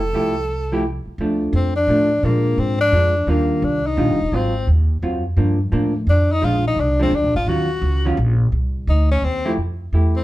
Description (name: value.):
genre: jazz, small-group swing and bop.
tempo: 172 BPM.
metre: 3/4.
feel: swing 64% on 8ths.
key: Bb major.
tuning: A4 = 440 Hz.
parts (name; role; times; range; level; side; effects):
clear tenor saxophone; melody; 0.0-10.2 s; Bb3 to A4; -20 LUFS; left 2 dB; none.
upright bass; bass; 0.0-10.2 s; Eb1 to Bb2; -19 LUFS; equal; none.
vintage hollow-body jazz guitar; accompaniment; 0.1-10.2 s; Eb3 to G4; -22 LUFS; right 1 dB; none.
room: moderate club reverb, RT60 0.8 s.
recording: heard from further back in the room.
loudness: -16 LUFS.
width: side -16 dB against mid.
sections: 0.0-1.2 A section; 1.2-9.6 B section.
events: none.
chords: 0.0 Fmaj9; 1.2 Dm; 2.2 Bb7; 3.3 Ebmaj9; 4.3 Ab6; 5.4 Gm7; 6.4 Bb7; 7.5 Ebm9; 8.5 F7; 9.6 Fmaj9.